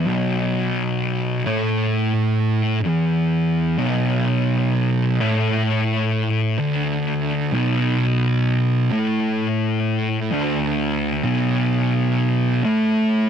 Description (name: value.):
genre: metal.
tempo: 64 BPM.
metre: 4/4.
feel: straight.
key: B minor.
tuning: A4 = 438 Hz.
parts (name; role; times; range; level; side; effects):
thick fuzz guitar; solo; 0.0-13.3 s; B1 to A3; -18 LUFS; equal; distortion.
room: light reverb.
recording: dry, close 1970s-style studio recording.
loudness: -18 LUFS.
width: side -8 dB against mid.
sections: 0.0-13.3 A section.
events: none.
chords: 0.0 Bm.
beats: | 0.08 1.00 1.93 2.86 | 3.79 4.72 5.66 6.59 | 7.52 8.45 9.38 10.31 | 11.25 12.18 13.11.